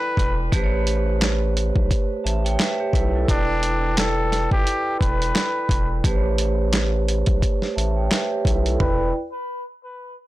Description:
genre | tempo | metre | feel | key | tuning
hip hop, boom-bap hip-hop | 87 BPM | 4/4 | swing 57% on 16ths | E dorian | A4 = 442 Hz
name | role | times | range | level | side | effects
trumpet with straight mute | melody | 0.0-9.1 s | D4 to B4 | -27 LUFS | left 1 dB | high-pass filter, low-pass filter, tape echo
vibraphone with hard mallets | accompaniment | 0.0-9.1 s | A3 to A5 | -25 LUFS | right 3 dB | cassette tape, high-pass filter, low-pass filter
saturated sub bass | bass | 0.2-9.1 s | E1 to B1 | -23 LUFS | equal | transformer saturation
dusty soul sampler-style drum kit | drums | 0.2-9.0 s | handclaps, hi-hat, kick drum, snare drum, toms | -22 LUFS | equal | none
room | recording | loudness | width
little or no reverb | blown-out, overdriven recording, overdrive | -19 LUFS | side -16 dB against mid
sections
0.0-8.8 A section; 8.8-10.3 B section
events
filter sweep 0.0-8.8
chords
0.0 Em7; 0.5 A9; 3.3 Em7; 6.0 A9; 8.8 Em7

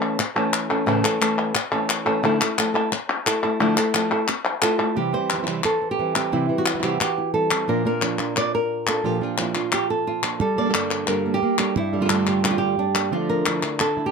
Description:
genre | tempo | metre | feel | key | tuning
flamenco | 176 BPM | 4/4 | straight | unclear | A4 = 440 Hz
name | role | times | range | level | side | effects
flamenco guitar | melody | 0.0-14.1 s | G2 to D5 | -22 LUFS | right 1 dB | none
palmas hand claps | percussion | 0.0-14.0 s | none | -24 LUFS | left 4 dB | none
flamenco guitar | stabs | 5.0-14.1 s | G2 to A4 | -27 LUFS | right 6 dB | none
room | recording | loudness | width
light reverb | close, detailed microphones | -20 LUFS | side -5 dB against mid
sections
0.0-5.0 A section; 5.0-14.1 B section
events
none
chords
0.0 A; 2.2 Dmadd9 (rootless); 5.0 C; 7.7 Bb; 10.4 Gmadd9; 13.1 Dmadd9

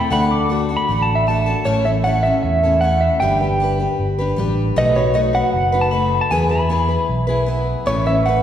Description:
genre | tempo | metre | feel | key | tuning
honky-tonk and classic country | 155 BPM | 4/4 | straight | A major | A4 = 440 Hz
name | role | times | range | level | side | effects
pedal steel guitar | melody | 0.0-8.4 s | C#5 to D6 | -18 LUFS | right 1 dB | none
picked steel-string acoustic guitar | accompaniment | 0.0-8.4 s | A2 to B4 | -21 LUFS | left 2 dB | none
fingered electric bass | bass | 0.1-8.4 s | F#1 to E2 | -20 LUFS | right 1 dB | none
room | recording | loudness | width
wet concert hall reverb, RT60 1.9 s | recorded in a church or concert hall | -15 LUFS | side -10 dB against mid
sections
0.0-1.7 A section; 1.7-8.4 B section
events
pedal steel guitar solo 0.0-1.7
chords
0.1 D; 1.7 A; 3.2 G; 4.8 B7; 6.3 E; 7.9 Aadd9

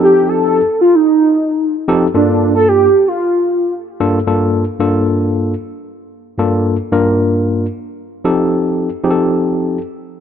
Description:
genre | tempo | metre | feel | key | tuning
funk | 113 BPM | 4/4 | straight | G minor | A4 = 440 Hz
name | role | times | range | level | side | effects
warm velvety synth lead | melody | 0.0-3.7 s | D4 to A4 | -11 LUFS | right 1 dB | chorus
tine electric piano | accompaniment | 0.0-9.8 s | G2 to Bb4 | -14 LUFS | left 1 dB | medium stereo tremolo
room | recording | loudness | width
light reverb | none | -12 LUFS | side -8 dB against mid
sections
0.0-4.3 A section; 4.3-10.2 B section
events
none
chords
0.0 F9; 2.1 Gm9; 8.2 F9

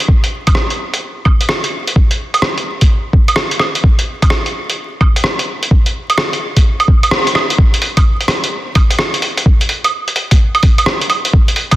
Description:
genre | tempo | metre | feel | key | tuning
future garage | 128 BPM | 4/4 | swing 66% on 16ths | none | none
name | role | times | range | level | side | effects
lo-fi sampler-style drum kit | drums | 0.0-11.8 s | claves, hi-hat, rim click | -15 LUFS | right 1 dB | soft clipping on snare
electronic kick drum | drums | 0.1-11.8 s | none | -10 LUFS | equal | none
room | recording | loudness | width
light reverb | dense, heavily limited modern master, vinyl crackle | -11 LUFS | side -16 dB against mid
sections
0.0-7.6 A section; 7.6-11.8 B section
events
band accent 7.1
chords
none

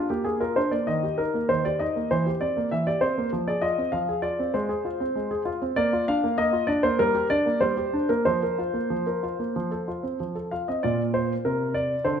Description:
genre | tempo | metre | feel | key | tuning
classical-period piano sonatina | 97 BPM | 4/4 | uneven beats | Bb major from 5.8 s | A4 = 439 Hz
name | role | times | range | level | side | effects
warm concert grand piano | solo | 0.0-12.2 s | Bb2 to F5 | -23 LUFS | equal | none
room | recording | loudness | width
moderate recital hall reverb, RT60 1.7 s | none | -23 LUFS | side -7 dB against mid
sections
0.0-10.8 A section; 10.8-12.2 B section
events
none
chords
0.0 Bb; 0.9 Eb; 2.1 C7/E; 3.3 Fm; 4.5 Fm/Ab; 5.8 Bb; 7.0 Gm; 8.2 Fsus4; 9.5 F; 10.8 Bb

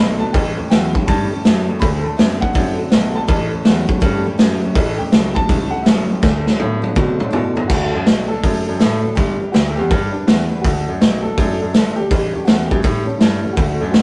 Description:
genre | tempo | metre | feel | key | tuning
rockabilly | 163 BPM | 4/4 | swing 65% on 8ths | D major | A4 = 441 Hz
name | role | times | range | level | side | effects
warm upright piano | melody | 0.0-14.0 s | C#4 to B5 | -28 LUFS | equal | none
picked steel-string acoustic guitar | accompaniment | 0.0-14.0 s | A2 to B4 | -28 LUFS | equal | none
electric guitar through a small old amp | riff | 0.0-7.7, 13.6-14.0 s | A2 to C4 | -27 LUFS | equal | none
bright grand piano | bass | 0.0-14.0 s | G1 to B2 | -24 LUFS | equal | none
vintage drum kit | drums | 0.3-14.0 s | crash cymbal, hi-hat, kick drum, snare drum, toms | -18 LUFS | equal | none
room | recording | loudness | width
light reverb | rough rehearsal-room recording, nothing above 10.9 kHz | -16 LUFS | mono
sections
0.0-7.7 A section; 7.7-14.0 B section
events
drum fill 6.2-7.7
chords
0.3 A7; 1.8 D; 3.3 A7; 6.2 D; 9.2 G; 10.6 D; 12.1 A7

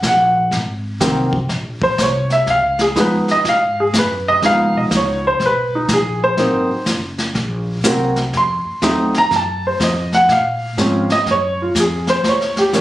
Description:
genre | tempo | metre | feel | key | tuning
jazz piano trio | 123 BPM | 4/4 | swing 66% on 8ths | Ab mixolydian | A4 = 440 Hz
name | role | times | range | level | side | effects
upright bass | bass | 0.0-12.8 s | Gb1 to Bb2 | -24 LUFS | equal | none
jazz brush drum kit | drums | 0.0-12.8 s | brushed snare drum, hi-hat, kick drum, snare drum | -21 LUFS | left 1 dB | none
warm upright piano | melody | 0.1-12.8 s | Eb3 to C6 | -15 LUFS | equal | none
room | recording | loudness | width
moderate small room reverb, RT60 0.5 s | recorded on a phone in the room, studio reverb, compression | -14 LUFS | side -15 dB against mid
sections
0.0-12.8 A section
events
upright piano solo 0.0-12.8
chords
0.0 Ab9; 2.5 Db9; 6.4 Ab9; 8.3 F7b9; 10.3 Bbm7; 12.2 Eb7

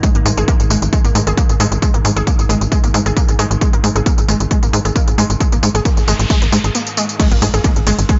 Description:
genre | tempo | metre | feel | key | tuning
driving peak-time techno | 134 BPM | 4/4 | straight | unclear | A4 = 444 Hz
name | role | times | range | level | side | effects
analog pluck | riff | 0.0-8.2 s | G#3 to G#4 | -23 LUFS | equal | chorus, cassette tape, sidechain pumping, dub echo
metallic inharmonic drone | drone | 0.0-7.2 s | G#2 to D#3 | -29 LUFS | equal | none
electronic kick drum | drums | 0.0-8.2 s | none | -17 LUFS | equal | overdrive
techno drum kit | drums | 0.0-8.2 s | crash cymbal, hi-hat, ride cymbal, tambourine | -25 LUFS | equal | overdrive
tight sequencer bass | bass | 0.1-8.1 s | G#1 to G#2 | -19 LUFS | equal | sidechain pumping
noise sweep and impact | sound effects | 5.9-8.2 s | none | -27 LUFS | equal | none
room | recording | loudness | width
light reverb, digital ambience | echo-heavy mix, nothing above 7.7 kHz | -15 LUFS | mono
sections
0.0-7.2 A section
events
noise sweep 5.9-7.2; break 6.7-7.2; impact 7.2-8.2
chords
0.0 G#5; 7.2 N.C.

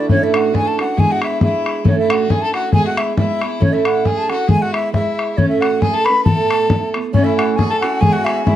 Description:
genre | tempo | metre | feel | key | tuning
celtic folk, Celtic polka | 136 BPM | 2/4 | swing 55% on 8ths | A major | A4 = 441 Hz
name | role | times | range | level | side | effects
wooden flute | melody | 0.0-8.6 s | C#5 to B5 | -20 LUFS | left 2 dB | none
hammered dulcimer | second line | 0.0-3.6, 7.1-8.6 s | C#4 to B4 | -26 LUFS | equal | none
rich fiddle | second line | 0.0-8.6 s | C#4 to B4 | -24 LUFS | left 4 dB | none
picked steel-string acoustic guitar | accompaniment | 0.0-8.6 s | A2 to A4 | -19 LUFS | right 6 dB | none
bodhran | percussion | 0.1-8.6 s | none | -17 LUFS | left 2 dB | none
room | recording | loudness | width
moderate studio reverb, RT60 0.6 s | dark, warm production | -14 LUFS | side -12 dB against mid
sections
0.1-7.1 A section; 7.1-8.6 A section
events
none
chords
0.1 A; 1.0 E/G#; 1.9 A; 2.7 E/G#; 3.6 A; 4.5 E/G#; 5.4 A; 6.3 Asus2; 7.1 A; 8.0 E/G#

